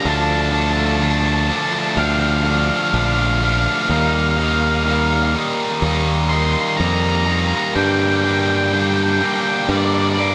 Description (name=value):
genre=post-rock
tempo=62 BPM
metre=4/4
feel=straight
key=G minor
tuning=A4 = 440 Hz
part: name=octave-fuzz lead guitar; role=melody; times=0.0-10.3 s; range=D5 to D6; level=-23 LUFS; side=equal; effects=distortion, digital delay
part: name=pedal steel guitar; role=sustained chords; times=0.0-10.3 s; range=D4 to G5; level=-36 LUFS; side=equal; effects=none
part: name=overdriven electric guitar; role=riff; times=0.0-10.3 s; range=G2 to Eb4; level=-24 LUFS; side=equal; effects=none
part: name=thick fuzz guitar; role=riff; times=0.0-10.3 s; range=G2 to Eb4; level=-25 LUFS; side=equal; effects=distortion
part: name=modern bright fingered electric bass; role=bass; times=0.1-10.3 s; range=Bb1 to G2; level=-22 LUFS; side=equal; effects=none
room=digital ambience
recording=none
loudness=-18 LUFS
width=mono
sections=0.0-10.3 A section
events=none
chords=0.0 Dm; 3.9 Ebadd9; 7.8 Gm